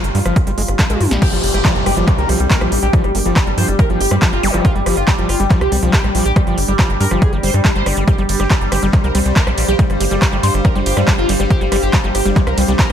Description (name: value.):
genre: psychedelic trance.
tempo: 140 BPM.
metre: 4/4.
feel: straight.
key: G minor.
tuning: A4 = 440 Hz.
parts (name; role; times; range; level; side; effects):
bubbling stepped-filter texture; sustained chords; 0.0-12.9 s; G3 to C5; -25 LUFS; equal; chorus, built-in reverb, sidechain pumping.
overdriven acid bass; riff; 0.0-12.9 s; F3 to Ab3; -24 LUFS; equal; distortion, auto-pan, sidechain pumping, tape echo.
tight sequencer bass; bass; 0.0-12.9 s; G1 to G2; -18 LUFS; equal; none.
big-room dance drum kit; drums; 0.0-12.9 s; crash cymbal, handclaps, hi-hat, ride cymbal, rim click, snare drum, toms; -21 LUFS; equal; overdrive.
electronic kick drum; drums; 0.4-12.9 s; none; -15 LUFS; equal; overdrive.
overdriven synth lead; melody; 1.2-12.9 s; G3 to C5; -21 LUFS; left 1 dB; phaser, sidechain pumping, tape echo.
downlifter and zap; sound effects; 1.2-4.6 s; none; -25 LUFS; equal; none.
ethereal airy pad; texture; 2.3-12.9 s; D4 to D6; -26 LUFS; right 2 dB; ensemble chorus, built-in reverb, sidechain pumping.
resonant blip pluck; second line; 2.3-12.9 s; F3 to G4; -34 LUFS; left 6 dB; none.
room: light reverb.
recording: none.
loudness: -12 LUFS.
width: side -9 dB against mid.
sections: 0.0-1.2 A section; 1.2-12.9 B section.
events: drum fill 0.8-1.2; drop 1.2-12.9.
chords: 0.0 G5.